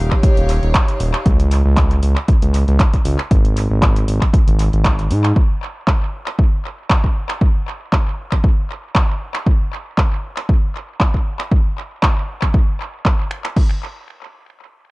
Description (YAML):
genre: deep house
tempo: 117 BPM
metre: 4/4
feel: swing 54% on 16ths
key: unclear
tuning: A4 = 440 Hz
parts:
  - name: smooth gliding synth bass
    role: bass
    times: 0.0-5.3 s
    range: Eb1 to Ab2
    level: -15 LUFS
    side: equal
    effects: sidechain pumping
  - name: rich chamber string section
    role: texture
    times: 0.0-1.3 s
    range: Eb4 to F5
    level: -24 LUFS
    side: left 1 dB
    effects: sidechain pumping
  - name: deep house drum kit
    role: drums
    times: 0.1-13.7 s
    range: crash cymbal, finger snaps, handclaps, hi-hat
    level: -23 LUFS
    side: equal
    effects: overdrive, vintage 12-bit sampler grit, tape echo
  - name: electronic kick drum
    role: drums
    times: 0.1-13.7 s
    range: none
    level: -14 LUFS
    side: equal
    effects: overdrive, vintage 12-bit sampler grit
room: little or no reverb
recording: echo-heavy mix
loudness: -14 LUFS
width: side -23 dB against mid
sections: 0.0-13.6 A section; 13.6-14.9 B section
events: none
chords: 0.0 Eb9; 1.3 N.C.